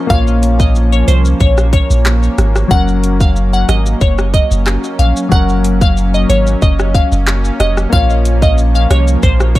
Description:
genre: dancehall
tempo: 92 BPM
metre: 4/4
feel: straight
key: unclear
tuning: A4 = 440 Hz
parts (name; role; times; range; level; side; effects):
- warm grand piano; accompaniment; 0.0-9.6 s; Gb3 to Db5; -20 LUFS; left 5 dB; sidechain pumping
- warm analog pad; sustained chords; 0.0-9.6 s; F3 to Db4; -20 LUFS; right 1 dB; chorus, tremolo, sidechain pumping
- glassy wavetable pluck; melody; 0.1-9.6 s; C5 to Gb5; -18 LUFS; left 1 dB; chorus, tape echo
- punchy sub bass; bass; 0.1-9.6 s; F1 to C2; -12 LUFS; equal; none
- island pop drum kit; drums; 0.1-9.6 s; handclaps, hi-hat, kick drum, rim click, shaker; -14 LUFS; equal; overdrive
room: digital ambience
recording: dark, warm production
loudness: -10 LUFS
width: side -16 dB against mid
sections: 0.0-9.6 A section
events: none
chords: 0.0 Bbm; 2.7 Gb; 7.9 Bbm

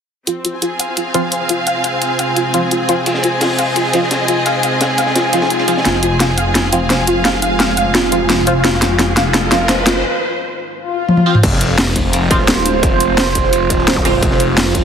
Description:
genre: dark technical drum and bass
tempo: 172 BPM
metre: 4/4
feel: straight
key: F minor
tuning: A4 = 440 Hz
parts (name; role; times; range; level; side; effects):
- deep dark ambient pad; sustained chords; 1.6-14.8 s; Ab3 to F5; -21 LUFS; right 5 dB; chorus, built-in reverb, sidechain pumping
- soft round pluck; arpeggios; 0.3-10.0 s; F4 to F5; -20 LUFS; equal; ensemble chorus, sidechain pumping, tape echo
- drum and bass drum kit; drums; 0.3-14.8 s; crash cymbal, hi-hat, rim click, snare drum, toms; -16 LUFS; equal; overdrive
- bright symphonic string section; texture; 0.3-14.8 s; C4 to Ab5; -20 LUFS; equal; sidechain pumping
- band-passed chord stab; stabs; 1.1-14.1 s; F3 to F4; -21 LUFS; right 1 dB; phaser, ensemble chorus, tape echo
- crunchy breakbeat drum kit; drums; 3.1-5.9, 11.4-14.8 s; hi-hat, ride cymbal, snare drum; -23 LUFS; equal; high-pass filter on cymbals, high-pass filter on hats, high-pass filter on snare, high-pass filter on room
- swell, riser and zap; sound effects; 5.3-11.4, 14.0-14.1 s; none; -23 LUFS; left 3 dB; none
- phased detuned saw bass; bass; 5.9-14.8 s; Eb1 to F1; -18 LUFS; equal; phaser, overdrive, sidechain pumping
- electronic kick drum; drums; 11.4-14.8 s; none; -18 LUFS; equal; distortion
room: moderate lush hall reverb, RT60 2.2 s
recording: heavily compressed radio sound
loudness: -12 LUFS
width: side -7 dB against mid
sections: 0.3-5.9 A section; 5.9-11.4 B section; 11.4-14.8 C section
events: filter sweep on ambient pad 0.3-5.9, 5.9-11.4; filter sweep on synth pluck 0.3-5.9; filter sweep on synth stab 0.3-5.9, 5.9-11.4; swell 5.3-5.9, 10.7-11.4; build-up 5.9-11.4; drum fill 5.9-10.0, 11.1-11.4; riser 7.8-10.0; break 10.0-11.4; drop 11.4-14.8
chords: 0.3 Fm

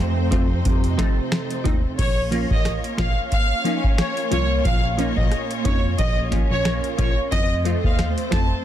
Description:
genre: dancehall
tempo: 90 BPM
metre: 4/4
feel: swing 56% on 16ths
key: Bb harmonic minor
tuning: A4 = 439 Hz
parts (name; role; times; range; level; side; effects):
- warm symphonic string section; sustained chords; 0.0-8.6 s; A3 to Db5; -31 LUFS; left 2 dB; sidechain pumping
- electric guitar through a small old amp; arpeggios; 0.0-8.6 s; F2 to Db4; -30 LUFS; right 4 dB; analog chorus
- tine electric piano; bass; 0.0-8.5 s; A1 to F2; -24 LUFS; equal; overdrive, fast stereo tremolo
- wavetable chord stab; accompaniment; 0.3-8.5 s; F3 to F4; -28 LUFS; left 1 dB; none
- booming analog drum machine; drums; 0.3-8.5 s; crash cymbal, finger snaps, hi-hat, kick drum, rim click, snare drum; -22 LUFS; equal; none
- warm studio violin section; melody; 2.0-8.5 s; Db5 to A5; -25 LUFS; equal; ping-pong delay
- bongos; percussion; 7.3-8.5 s; none; -36 LUFS; right 2 dB; none
room: digital ambience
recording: dense, heavily limited modern master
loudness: -18 LUFS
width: side -11 dB against mid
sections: 0.0-2.0 A section; 2.0-8.6 B section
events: none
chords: 0.0 F; 2.0 Bbm; 7.3 F

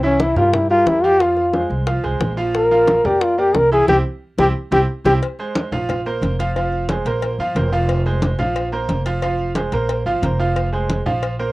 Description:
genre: latin, salsa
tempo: 180 BPM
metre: 4/4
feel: straight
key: F minor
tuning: A4 = 440 Hz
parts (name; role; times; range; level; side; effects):
- warm trombone; melody; 0.0-5.1 s; Db4 to Bb4; -14 LUFS; left 1 dB; cassette tape
- bright grand piano; accompaniment; 0.0-11.5 s; E3 to F5; -22 LUFS; right 2 dB; cassette tape
- upright bass; bass; 0.0-11.5 s; F1 to G2; -22 LUFS; equal; none
- congas; percussion; 0.0-11.5 s; none; -25 LUFS; equal; none
- bongos and cowbell; percussion; 0.2-11.4 s; none; -27 LUFS; left 4 dB; none
room: light reverb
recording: home recording on cassette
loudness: -16 LUFS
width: side -19 dB against mid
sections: 0.0-5.2 A section; 5.2-11.5 B section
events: trombone solo 0.0-5.2; band accent 3.9-5.2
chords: 0.0 C7; 1.2 Fm; 2.5 Bb; 3.9 C; 5.2 Fm; 5.9 Bbsus2; 6.6 Fm; 7.2 Bbsus2; 7.9 Fm; 8.6 Bbsus2; 9.2 Fm; 9.9 Bbsus2; 10.6 Fm

